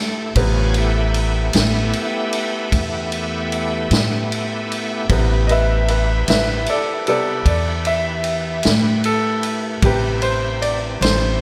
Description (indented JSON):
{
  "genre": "slow blues",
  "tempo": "51 BPM (dotted quarters)",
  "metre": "12/8",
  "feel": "straight",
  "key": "A minor",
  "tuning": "A4 = 439 Hz",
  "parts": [
    { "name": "bright tonewheel organ", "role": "sustained chords", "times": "0.0-11.4 s", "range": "A3 to G#5", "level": "-27 LUFS", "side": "equal", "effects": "slow rotary speaker, overdrive, chorus vibrato" },
    { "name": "upright bass", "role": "bass", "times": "0.0-11.4 s", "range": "A1 to A2", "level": "-22 LUFS", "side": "equal", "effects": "none" },
    { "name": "bright concert grand piano", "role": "accompaniment", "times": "0.4-11.4 s", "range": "C3 to E5", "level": "-23 LUFS", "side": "equal", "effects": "slapback echo" },
    { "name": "vintage drum kit", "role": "drums", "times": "0.4-11.2 s", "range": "kick drum, ride cymbal, snare drum", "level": "-25 LUFS", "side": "equal", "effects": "none" }
  ],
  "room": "moderate scoring stage reverb, RT60 1.8 s, studio reverb",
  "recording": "big arena sound",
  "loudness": "-19 LUFS",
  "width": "mono",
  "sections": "0.0-11.4 A section",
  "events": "grand piano solo 0.0-11.4",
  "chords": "0.0 Am9"
}